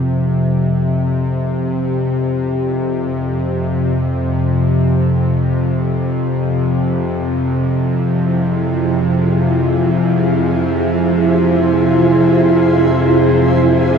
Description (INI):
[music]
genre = dark ambient drone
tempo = free time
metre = none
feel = none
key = F harmonic minor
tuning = A4 = 440 Hz
[part]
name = bowed-like drone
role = drone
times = 0.0-14.0 s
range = F2 to C3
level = -14 LUFS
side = equal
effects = built-in reverb
[part]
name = granular cloud pad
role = sustained chords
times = 8.3-14.0 s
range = E4 to C5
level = -14 LUFS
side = right 1 dB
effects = built-in reverb, shimmer reverb
[sound]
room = wet cathedral reverb, RT60 6.6 s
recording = none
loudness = -13 LUFS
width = side -6 dB against mid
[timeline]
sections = 0.0-14.0 A section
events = none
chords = 0.0 Fm